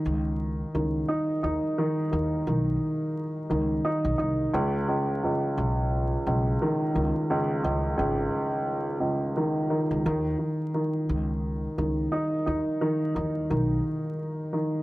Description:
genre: hip hop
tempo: 87 BPM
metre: 4/4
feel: swing 57% on 16ths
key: unclear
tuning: A4 = 440 Hz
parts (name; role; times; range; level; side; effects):
- dark upright piano; accompaniment; 0.0-14.8 s; C#2 to D#4; -26 LUFS; equal; cassette tape, high-pass filter, low-pass filter
- upright bass; bass; 0.1-13.8 s; G#1 to D#2; -29 LUFS; equal; none
room: moderate small room reverb, RT60 0.6 s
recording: vinyl crackle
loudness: -25 LUFS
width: side -18 dB against mid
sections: 0.0-14.8 A section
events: none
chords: 0.0 Badd9 (rootless); 4.5 C#sus2; 10.1 Badd9 (rootless)

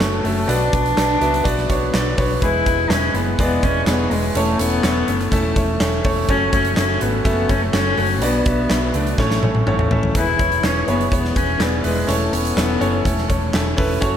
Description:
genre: piano-driven pop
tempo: 124 BPM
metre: 4/4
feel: straight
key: A major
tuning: A4 = 440 Hz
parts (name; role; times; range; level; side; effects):
- warm cello; melody; 0.0-13.8 s; G#3 to E4; -22 LUFS; left 2 dB; none
- clear concert grand piano; accompaniment; 0.0-14.2 s; A2 to E5; -21 LUFS; equal; slapback echo
- hollow-body short-scale fingered electric bass; bass; 0.0-14.2 s; E1 to C#2; -23 LUFS; equal; none
- huge arena drum kit; drums; 0.0-14.1 s; handclaps, hi-hat, kick drum, snare drum, toms; -21 LUFS; equal; none
room: light reverb, small room ambience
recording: none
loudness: -16 LUFS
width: side -9 dB against mid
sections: 0.0-10.2 A section; 10.2-14.2 B section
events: drum fill 9.2-10.2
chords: 0.5 Bm; 2.4 E; 4.4 A/E; 6.3 F#m; 8.2 Bm; 9.2 A; 10.2 E; 12.1 A/E

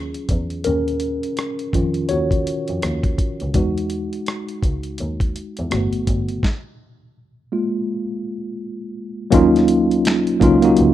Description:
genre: R&B, neo-soul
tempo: 83 BPM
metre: 4/4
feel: swing 61% on 16ths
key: Eb minor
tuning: A4 = 440 Hz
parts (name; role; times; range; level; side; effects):
- tine electric piano; accompaniment; 0.0-10.9 s; Eb3 to Db5; -19 LUFS; equal; medium stereo tremolo
- dusty soul sampler-style drum kit; drums; 0.1-10.9 s; finger snaps, hi-hat, kick drum, rim click, snare drum; -22 LUFS; equal; none
- rich double bass; bass; 0.3-10.9 s; G1 to F2; -24 LUFS; equal; none
room: digital ambience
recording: rough home demo mix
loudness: -17 LUFS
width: side -12 dB against mid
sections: 0.0-9.3 A section; 9.3-10.9 B section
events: tine electric piano solo 0.0-9.3; stop 6.4-9.3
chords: 0.0 Ebm7; 3.5 Emaj9; 5.7 Gmaj7; 6.4 Absus2; 9.3 Ebm7

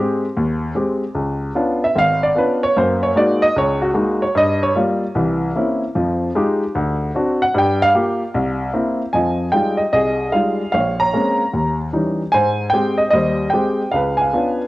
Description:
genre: solo jazz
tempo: 150 BPM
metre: 4/4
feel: swing 66% on 8ths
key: F minor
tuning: A4 = 440 Hz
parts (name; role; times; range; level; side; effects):
- warm baby grand piano; solo; 0.0-14.7 s; Ab1 to Bb5; -16 LUFS; equal; cassette tape
room: moderate spring reverb, RT60 2.5 s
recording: home recording on cassette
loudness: -16 LUFS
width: side -18 dB against mid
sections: 0.0-9.1 A section; 9.1-14.7 B section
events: grand piano solo 0.0-9.1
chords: 0.0 Abmaj7; 1.2 Db7b9; 2.8 Gb69; 4.3 Gm7b5; 5.1 C7b9; 5.9 Fm9; 6.7 D7; 7.5 Gm7; 8.3 C7; 9.1 Fm9; 10.7 Bbm9; 11.5 Eb7b9; 12.3 Abmaj7; 13.9 Db7b9

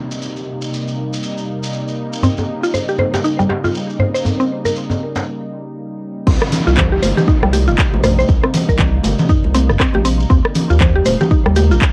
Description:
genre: afro house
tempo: 119 BPM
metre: 4/4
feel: swing 59% on 16ths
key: C phrygian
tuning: A4 = 438 Hz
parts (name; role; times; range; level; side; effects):
- warm analog pad; sustained chords; 0.0-11.9 s; C3 to Eb4; -27 LUFS; equal; chorus, vintage 12-bit sampler grit, sidechain pumping
- downlifter; sound effects; 0.0-2.2, 6.3-10.3 s; none; -32 LUFS; equal; none
- shekere; percussion; 0.1-11.9 s; none; -34 LUFS; equal; none
- mallet-like synth pluck; arpeggios; 2.2-11.8 s; G3 to C5; -21 LUFS; equal; chorus, sidechain pumping, analog delay
- djembe; percussion; 2.2-5.2 s; none; -21 LUFS; equal; none
- round analog bass; bass; 6.3-11.8 s; Eb1 to Eb2; -18 LUFS; equal; tube saturation, sidechain pumping
- electronic kick drum; drums; 6.3-11.9 s; none; -17 LUFS; equal; none
- house drum kit; drums; 6.3-11.9 s; crash cymbal, handclaps, hi-hat, rim click, toms; -22 LUFS; equal; none
- congas; percussion; 6.3-11.8 s; none; -22 LUFS; equal; none
room: light reverb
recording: home recording on cassette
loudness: -16 LUFS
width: mono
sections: 0.0-6.3 A section; 6.3-11.9 B section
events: break 5.3-6.3; drop 6.3-11.9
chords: 0.0 Cm7; 2.2 Eb7; 6.3 Cm7; 10.3 Eb7

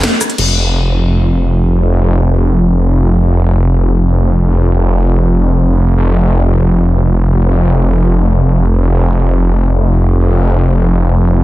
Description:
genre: dark technical drum and bass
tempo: free time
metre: none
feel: none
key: unclear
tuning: A4 = 440 Hz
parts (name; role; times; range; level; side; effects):
- snarling distorted saw bass; bass; 0.0-11.4 s; F1; -9 LUFS; equal; distortion, tube saturation
- drum and bass drum kit; drums; 0.0-0.5 s; crash cymbal, hi-hat, ride cymbal, rim click, shaker, snare drum; -15 LUFS; left 2 dB; none
room: little or no reverb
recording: dense, heavily limited modern master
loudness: -9 LUFS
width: side -17 dB against mid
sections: 0.4-11.4 A section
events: break 0.0-0.4; band accent 0.0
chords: none

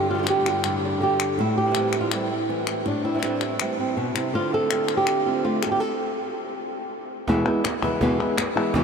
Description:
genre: flamenco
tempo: 163 BPM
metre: 4/4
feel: straight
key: A minor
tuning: A4 = 437 Hz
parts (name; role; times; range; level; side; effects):
- flamenco guitar; melody; 0.0-8.8 s; E2 to A4; -23 LUFS; equal; analog delay
- flamenco guitar; stabs; 0.1-5.8 s; G2 to G4; -29 LUFS; right 3 dB; none
- palmas hand claps; percussion; 0.3-8.8 s; none; -31 LUFS; left 7 dB; none
- cajon; percussion; 7.3-8.8 s; none; -29 LUFS; right 2 dB; none
room: wet huge ambient reverb, RT60 9.0 s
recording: dreamy mix soaked in reverb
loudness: -21 LUFS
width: side -6 dB against mid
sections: 0.0-7.3 A section; 7.3-8.8 B section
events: stop 5.8-7.3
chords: 0.0 Gadd9; 1.4 Am7; 4.3 Dm7; 5.8 N.C.; 7.3 E

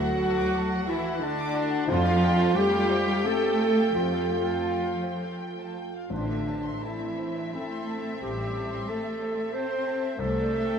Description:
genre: cinematic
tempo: 81-93 BPM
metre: 3/4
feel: rubato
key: unclear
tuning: A4 = 445 Hz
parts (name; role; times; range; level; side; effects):
- warm symphonic violin section; melody; 0.0-10.8 s; E5 to G5; -38 LUFS; left 2 dB; none
- clear clarinet; second line; 0.0-10.8 s; D4 to C5; -35 LUFS; right 4 dB; none
- warm studio violin section; second line; 0.0-10.8 s; C5 to D6; -38 LUFS; left 2 dB; none
- clear symphonic viola section; accompaniment; 0.0-10.8 s; A3 to D4; -39 LUFS; right 1 dB; none
- felt-muted upright piano; accompaniment; 0.0-10.8 s; A1 to G4; -37 LUFS; left 3 dB; none
- warm French horn section; sustained chords; 0.0-10.8 s; D4 to C5; -28 LUFS; equal; none
- rich chamber double bass section; bass; 0.0-10.7 s; A1 to F2; -33 LUFS; equal; none
- warm symphonic cello section; bass; 0.0-10.8 s; D3 to C4; -31 LUFS; equal; none
room: wet cathedral reverb, RT60 5.2 s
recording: in a vast, echoing space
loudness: -24 LUFS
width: side -7 dB against mid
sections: 0.0-10.8 A section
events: none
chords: 0.0 Dadd9; 1.9 Fadd9; 6.1 Am; 10.2 Cadd9

